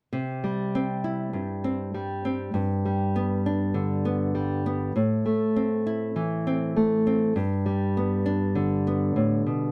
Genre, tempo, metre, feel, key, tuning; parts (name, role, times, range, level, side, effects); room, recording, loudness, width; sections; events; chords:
folk; 100 BPM; 4/4; straight; C major; A4 = 440 Hz
nylon-string guitar; accompaniment; 0.1-9.7 s; G2 to E4; -26 LUFS; equal
moderate studio reverb, RT60 0.6 s; dark, warm production; -26 LUFS; mono
0.1-9.7 A section
0.1 C; 2.5 G; 5.0 Am; 7.4 G